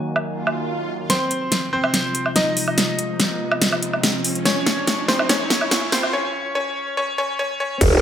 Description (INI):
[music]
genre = heavy wobble dubstep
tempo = 143 BPM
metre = 4/4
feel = half-time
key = F phrygian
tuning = A4 = 440 Hz
[part]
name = bright concert grand piano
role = melody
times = 0.0-7.8 s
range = C4 to Ab5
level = -23 LUFS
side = left 1 dB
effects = digital delay
[part]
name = evolving wavetable pad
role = sustained chords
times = 0.0-8.0 s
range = F2 to Gb4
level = -28 LUFS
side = left 1 dB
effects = chorus, built-in reverb, sidechain pumping
[part]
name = dubstep drum kit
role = drums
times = 0.2-7.9 s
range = crash cymbal, hi-hat, snare drum, woodblock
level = -20 LUFS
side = equal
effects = low-pass filter on perc, low-pass filter on snare, low-pass filter on hats, low-pass filter on cymbals
[part]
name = swell, riser and sub drop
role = sound effects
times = 0.4-8.0 s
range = none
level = -29 LUFS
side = right 2 dB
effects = none
[part]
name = growl bass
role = bass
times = 7.8-8.0 s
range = F1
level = -15 LUFS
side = right 1 dB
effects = chorus, overdrive
[part]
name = electronic kick drum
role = drums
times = 7.8-7.9 s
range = none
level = -19 LUFS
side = equal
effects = distortion
[sound]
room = moderate digital room reverb, RT60 1.1 s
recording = high-pass filter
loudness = -18 LUFS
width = side -9 dB against mid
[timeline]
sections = 0.0-1.1 A section; 1.1-7.8 B section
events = swell 0.4-1.1; build-up 1.1-7.8; drum fill 1.1-6.1; riser 1.1-6.1; filter sweep on ambient pad 1.1-7.8; break 6.1-7.8; impact 7.8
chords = 0.0 Ebm; 1.1 Fm; 4.5 Db/F